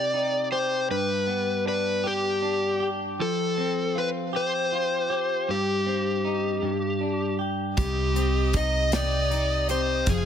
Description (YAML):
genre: six-eight pop ballad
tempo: 52 BPM (dotted quarters)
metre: 6/8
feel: straight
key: C harmonic minor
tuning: A4 = 439 Hz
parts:
  - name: overdriven slide guitar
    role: melody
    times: 0.0-10.3 s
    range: G4 to Eb5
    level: -26 LUFS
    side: left 2 dB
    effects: digital delay
  - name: direct-recorded clean electric guitar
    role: accompaniment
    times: 0.0-10.3 s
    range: G2 to G4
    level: -29 LUFS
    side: right 1 dB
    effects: double-tracked left and right
  - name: bright studio violin section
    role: second line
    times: 7.8-10.3 s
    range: Eb5 to F5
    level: -34 LUFS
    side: right 1 dB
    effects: digital delay
  - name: picked steel-string acoustic guitar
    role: arpeggios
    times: 7.8-10.3 s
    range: F3 to G4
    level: -34 LUFS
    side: left 10 dB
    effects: none
  - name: upright bass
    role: bass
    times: 7.8-10.3 s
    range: F1 to C2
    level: -26 LUFS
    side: right 1 dB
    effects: none
  - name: modern studio drum kit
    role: drums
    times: 7.8-10.2 s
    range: hi-hat, kick drum, snare drum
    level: -28 LUFS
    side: equal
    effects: none
room: light reverb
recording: none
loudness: -23 LUFS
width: side -8 dB against mid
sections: 0.0-10.3 A section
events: none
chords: 0.0 Cm; 0.9 G; 3.2 Fadd9; 5.5 Cm/G; 6.6 G5; 7.8 Cm